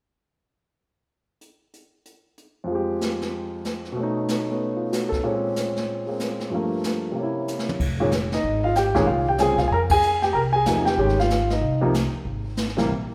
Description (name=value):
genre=jazz piano trio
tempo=188 BPM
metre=4/4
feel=swing 62% on 8ths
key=unclear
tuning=A4 = 440 Hz
part: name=jazz brush drum kit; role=drums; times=1.4-13.1 s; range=brushed snare drum, crash cymbal, hi-hat, kick drum, ride cymbal, snare drum, toms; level=-31 LUFS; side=equal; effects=none
part: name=warm concert grand piano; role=melody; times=2.6-12.9 s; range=F2 to Bb5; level=-24 LUFS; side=equal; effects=none
part: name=upright bass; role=bass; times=7.8-13.1 s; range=F1 to F2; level=-29 LUFS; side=equal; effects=none
room=moderate recital hall reverb, RT60 1.5 s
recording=recorded in a church or concert hall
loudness=-23 LUFS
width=mono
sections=1.4-2.7 A section; 2.7-7.8 B section; 7.8-13.1 C section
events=drum fill 7.5-7.8; band accent 9.9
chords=1.4 N.C.; 2.7 Fmadd9; 4.0 B9; 5.2 Bbm9; 6.5 Gm9; 7.2 C7b9; 7.8 Fm9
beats=| 1.41 1.73 2.05 2.37 | 2.69 3.01 3.33 3.65 | 3.96 4.28 4.60 4.92 | 5.24 5.56 5.88 6.20 | 6.52 6.84 7.16 7.47 | 7.79 8.11 8.43 8.75 | 9.07 9.39 9.70 10.02 | 10.34 10.66 10.98 11.30 | 11.62 11.93 12.25 12.57 | 12.89